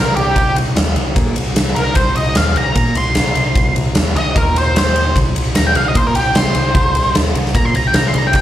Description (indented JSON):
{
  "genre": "blues rock power trio and southern rock",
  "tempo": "150 BPM",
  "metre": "4/4",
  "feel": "straight",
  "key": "C minor",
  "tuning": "A4 = 440 Hz",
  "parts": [
    { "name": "octave-fuzz lead guitar", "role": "melody", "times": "0.0-8.4 s", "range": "G4 to C6", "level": "-17 LUFS", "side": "equal", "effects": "wah, distortion, slapback echo" },
    { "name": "growling picked electric bass", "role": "bass", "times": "0.0-8.4 s", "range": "C2 to Bb2", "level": "-18 LUFS", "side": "equal", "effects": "overdrive" },
    { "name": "huge arena drum kit", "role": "drums", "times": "0.2-8.4 s", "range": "kick drum, ride cymbal, snare drum", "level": "-16 LUFS", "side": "equal", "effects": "none" }
  ],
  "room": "moderate club reverb, RT60 0.8 s",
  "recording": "live gig heard through the venue's PA, club reverb",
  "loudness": "-12 LUFS",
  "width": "side -12 dB against mid",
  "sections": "0.0-8.4 A section",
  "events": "lead electric guitar solo 0.0-8.4",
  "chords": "0.0 Cm"
}